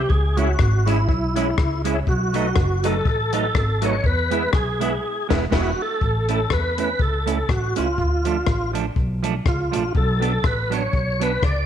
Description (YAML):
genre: ska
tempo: 122 BPM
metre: 4/4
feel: swing 56% on 8ths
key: A major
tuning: A4 = 440 Hz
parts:
  - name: tonewheel organ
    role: melody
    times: 0.0-11.7 s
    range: E4 to D5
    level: -24 LUFS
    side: equal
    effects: overdrive, chorus vibrato, slow rotary speaker
  - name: percussive tonewheel organ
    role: stabs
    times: 0.0-5.7 s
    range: E4 to E5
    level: -30 LUFS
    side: left 10 dB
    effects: chorus vibrato, fast rotary speaker
  - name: upright bass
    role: bass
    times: 0.0-11.7 s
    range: E1 to E2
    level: -23 LUFS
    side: equal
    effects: none
  - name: compact cocktail drum kit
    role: drums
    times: 0.1-11.6 s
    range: crash cymbal, hi-hat, kick drum, rim click, snare drum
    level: -23 LUFS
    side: left 2 dB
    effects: none
  - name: semi-hollow electric guitar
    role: accompaniment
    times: 0.4-11.3 s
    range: F3 to E4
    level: -27 LUFS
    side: right 11 dB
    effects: none
room: light reverb, small room reverb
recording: 1960s-style stereo with parts hard left and right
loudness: -18 LUFS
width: side -9 dB against mid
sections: 0.0-6.0 A section; 6.0-11.7 B section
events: band accent 5.0-6.0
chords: 0.1 C#m; 2.1 B7; 4.0 E; 6.0 A; 8.0 Dm; 9.9 Bm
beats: | 0.10 0.59 1.09 1.58 | 2.07 2.57 3.06 3.55 | 4.04 4.54 5.03 5.52 | 6.01 6.51 7.00 7.49 | 7.98 8.47 8.96 9.46 | 9.95 10.44 10.93 11.42